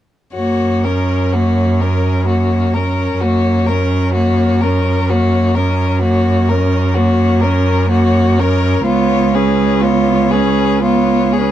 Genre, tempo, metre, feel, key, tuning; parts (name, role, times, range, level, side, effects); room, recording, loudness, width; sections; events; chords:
classical, slow romantic movement for string quartet; 63 BPM; 3/4; rubato; F# major; A4 = 438 Hz
rich violin; melody; 0.3-11.5 s; A#4 to C#5; -22 LUFS; left 6 dB
warm violin; second line; 0.3-11.5 s; E#4 to A#4; -20 LUFS; left 4 dB
clear cello; bass; 0.3-11.5 s; C#2 to F#2; -15 LUFS; right 3 dB
rich viola; accompaniment; 0.4-11.5 s; A#3 to C#4; -17 LUFS; equal
light reverb; dark, warm production; -12 LUFS; side -11 dB against mid
0.3-11.5 A section
0.3 F#; 8.9 C#7